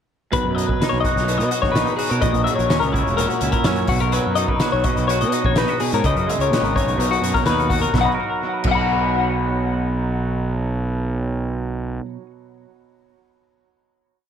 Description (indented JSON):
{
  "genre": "math rock and midwest emo",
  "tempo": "126 BPM",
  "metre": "4/4",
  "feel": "straight",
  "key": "B major",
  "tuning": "A4 = 439 Hz",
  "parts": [
    { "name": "twangy electric guitar", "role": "accompaniment", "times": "0.3-12.3 s", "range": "A#2 to A#4", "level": "-24 LUFS", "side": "right 7 dB", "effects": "wide subtle chorus, dub echo" },
    { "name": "twelve-string electric guitar", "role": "arpeggios", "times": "0.3-12.1 s", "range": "F#4 to B5", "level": "-21 LUFS", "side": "left 8 dB", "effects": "dub echo" },
    { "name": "fuzz fingered electric bass", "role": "bass", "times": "0.3-12.0 s", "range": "E1 to B2", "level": "-23 LUFS", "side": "right 1 dB", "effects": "overdrive" },
    { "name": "loose indie drum kit", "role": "drums", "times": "0.3-8.8 s", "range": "crash cymbal, hi-hat, kick drum, snare drum", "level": "-24 LUFS", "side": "equal", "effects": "dub echo" }
  ],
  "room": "light reverb, small room ambience",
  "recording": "echo-heavy mix",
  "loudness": "-17 LUFS",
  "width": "side -8 dB against mid",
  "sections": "0.3-7.9 A section; 7.9-11.7 final chord",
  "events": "none",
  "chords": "0.3 Bmaj9; 2.2 F#7/A#; 3.9 Bmaj9; 6.0 C#7sus2; 7.0 Bmaj7"
}